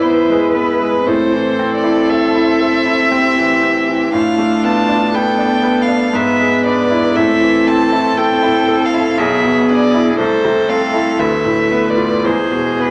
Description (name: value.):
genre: classical, slow romantic movement for piano quartet.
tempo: 59 BPM.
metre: 3/4.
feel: rubato.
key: A minor.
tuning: A4 = 441 Hz.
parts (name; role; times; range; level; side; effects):
rich violin; melody; 0.0-12.9 s; B4 to A5; -20 LUFS; equal; none.
warm cello; second line; 0.0-12.9 s; F4 to B4; -22 LUFS; equal; none.
bright baby grand piano; accompaniment; 0.0-12.9 s; B1 to B4; -18 LUFS; equal; none.
dark viola; accompaniment; 0.0-12.9 s; G#3 to E4; -21 LUFS; equal; none.
room: wet stone room reverb, RT60 1.2 s.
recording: none.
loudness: -14 LUFS.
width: mono.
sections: 0.0-12.9 A section.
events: none.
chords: 0.0 E/G#; 1.1 Am; 4.1 Bm7b5/A; 6.2 E7/G#; 7.2 Am; 9.2 E7/B; 10.2 Am/C; 11.2 Bm7b5/D; 12.3 E.